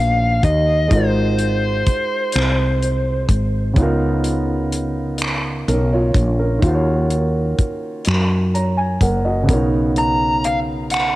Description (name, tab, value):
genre	slow six-eight R&B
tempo	42 BPM (dotted quarters)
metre	6/8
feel	straight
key	Eb minor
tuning	A4 = 438 Hz
part	dark smooth lead guitar	melody	0.0-3.3, 10.0-11.2 s	C5 to A#5	-20 LUFS	equal	overdrive, tape echo
part	dark concert grand piano	accompaniment	0.0-11.2 s	Db3 to Bb5	-22 LUFS	right 1 dB	cassette tape
part	woody fretless electric bass	bass	0.0-11.2 s	Gb1 to Gb2	-19 LUFS	equal	none
part	damped 70s drum kit	drums	0.4-11.1 s	finger snaps, hi-hat, kick drum	-19 LUFS	equal	none
room	light reverb, small room ambience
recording	home recording on cassette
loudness	-16 LUFS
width	side -17 dB against mid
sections	0.0-11.2 A section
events	none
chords	0.0 Bmaj9; 0.9 Ab13; 3.8 Db13; 6.6 Ebm7; 9.5 Bmaj9